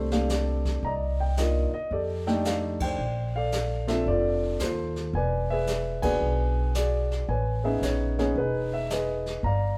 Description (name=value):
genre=jazz piano trio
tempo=112 BPM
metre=4/4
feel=swing 66% on 8ths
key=unclear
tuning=A4 = 442 Hz
part: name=warm grand piano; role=melody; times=0.0-9.8 s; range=A3 to Bb5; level=-30 LUFS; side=equal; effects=none
part: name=upright bass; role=bass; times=0.0-9.8 s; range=E1 to F2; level=-31 LUFS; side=equal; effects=none
part: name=jazz brush drum kit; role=drums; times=0.1-9.8 s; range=brushed snare drum, hi-hat, kick drum, ride cymbal, snare drum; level=-38 LUFS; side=equal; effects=none
room=moderate large studio reverb, RT60 1.3 s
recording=band playing live in one room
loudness=-27 LUFS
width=mono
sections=0.0-9.8 A section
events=band accent 2.7, 5.9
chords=0.0 F69; 1.9 F13; 3.0 Bbmaj9; 5.1 E9; 7.3 Amaj9#11